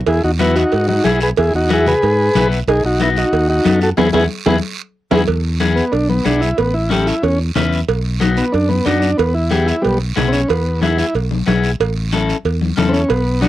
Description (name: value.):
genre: latin, cumbia.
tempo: 184 BPM.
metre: 4/4.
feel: straight.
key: E major.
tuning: A4 = 440 Hz.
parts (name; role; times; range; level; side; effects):
combo organ; melody; 0.1-13.5 s; G3 to B4; -16 LUFS; equal; cassette tape.
fingered electric bass; bass; 0.1-13.5 s; A1 to G#2; -18 LUFS; equal; none.
cowbell and timbales; percussion; 0.1-13.5 s; none; -21 LUFS; right 8 dB; none.
guiro; percussion; 0.1-13.5 s; none; -30 LUFS; right 8 dB; none.
electric guitar at the edge of break-up; accompaniment; 0.4-13.5 s; B3 to B4; -19 LUFS; left 5 dB; cassette tape.
congas; percussion; 0.4-13.5 s; none; -21 LUFS; left 5 dB; none.
room: light reverb.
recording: home recording on cassette.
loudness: -13 LUFS.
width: side -14 dB against mid.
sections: 0.0-5.3 A section; 5.3-13.5 B section.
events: band accent 4.0-5.3; drum fill 4.5-5.3; transistor combo organ solo 5.3-13.5.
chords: 0.0 E; 2.7 B7; 4.0 E; 6.6 A; 7.9 B; 9.2 E; 11.8 A.